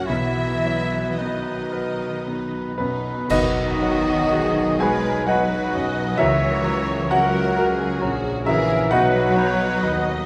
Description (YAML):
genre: classical, romantic movement for piano and orchestra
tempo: 53-68 BPM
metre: 3/4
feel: rubato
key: B major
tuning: A4 = 441 Hz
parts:
  - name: clear concert grand piano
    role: melody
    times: 0.0-10.3 s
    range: B1 to G#5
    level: -25 LUFS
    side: equal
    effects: none
  - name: warm symphonic violin section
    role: melody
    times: 0.0-10.3 s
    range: D#4 to E5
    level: -36 LUFS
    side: equal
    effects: none
  - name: hollow concert flute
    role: second line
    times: 0.0-9.9 s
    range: D#5 to B5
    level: -37 LUFS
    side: equal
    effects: none
  - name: warm clarinet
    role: second line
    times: 0.0-10.0 s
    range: D#4 to F#4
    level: -35 LUFS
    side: equal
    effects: none
  - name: warm symphonic violin section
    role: second line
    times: 0.0-10.3 s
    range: D#4 to B4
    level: -34 LUFS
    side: equal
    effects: none
  - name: rich symphonic viola section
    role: accompaniment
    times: 0.0-10.3 s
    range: B3 to D#5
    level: -33 LUFS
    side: equal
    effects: none
  - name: mellow French horn section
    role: sustained chords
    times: 0.0-10.3 s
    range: B2 to F#4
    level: -31 LUFS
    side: equal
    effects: none
  - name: rich studio double bass section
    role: bass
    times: 0.0-10.3 s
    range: A#1 to D#2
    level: -34 LUFS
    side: equal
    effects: none
  - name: warm symphonic cello section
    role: bass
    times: 0.0-10.3 s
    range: B2 to G#3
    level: -32 LUFS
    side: equal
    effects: none
  - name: warm oboe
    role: second line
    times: 1.2-10.3 s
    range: A#4 to G#5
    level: -31 LUFS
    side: equal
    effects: none
  - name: brilliant trombone section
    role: sustained chords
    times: 3.3-10.3 s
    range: F#3 to D#4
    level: -34 LUFS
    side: equal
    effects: none
  - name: mellow tuba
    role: bass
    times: 3.3-10.3 s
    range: A#1 to D#2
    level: -33 LUFS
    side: equal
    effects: none
  - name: clash cymbals and concert bass drum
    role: percussion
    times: 3.3-5.2 s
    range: none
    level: -35 LUFS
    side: equal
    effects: none
room: wet scoring stage reverb, RT60 1.8 s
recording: none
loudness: -21 LUFS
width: mono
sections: 0.0-3.3 A section; 3.3-10.3 A section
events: band accent 3.3-4.3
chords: 0.1 B; 6.2 F#7/C#; 8.9 B